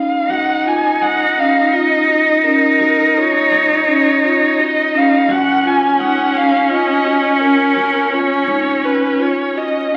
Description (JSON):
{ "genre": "contemporary instrumental, chamber music in an uneven meter", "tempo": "168 BPM (eighths)", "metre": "7/8", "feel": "straight", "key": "F# major", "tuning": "A4 = 441 Hz", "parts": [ { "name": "dark violin", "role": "melody", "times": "0.0-10.0 s", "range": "A#4 to G#5", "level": "-20 LUFS", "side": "equal", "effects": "none" }, { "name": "marimba with medium mallets", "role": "arpeggios", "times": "0.0-10.0 s", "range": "C#4 to F#4", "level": "-21 LUFS", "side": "equal", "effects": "none" }, { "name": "upright bass", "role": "bass", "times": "0.0-9.5 s", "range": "F#1 to C#2", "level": "-40 LUFS", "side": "equal", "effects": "none" }, { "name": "rich cello", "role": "second line", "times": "0.3-9.9 s", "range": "C#4 to D#4", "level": "-17 LUFS", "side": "equal", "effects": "none" } ], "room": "wet recital hall reverb, RT60 1.7 s", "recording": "very old 78 rpm record, vinyl crackle", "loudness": "-14 LUFS", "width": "mono", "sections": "0.3-10.0 A section", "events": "none", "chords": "0.0 F#5", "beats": "| 0.30 0.66 1.02 1.38 1.74 2.09 2.45 | 2.81 3.17 3.52 3.88 4.24 4.59 4.95 | 5.30 5.65 6.01 6.36 6.71 7.07 7.42 | 7.77 8.12 8.48 8.84 9.19 9.55 9.91" }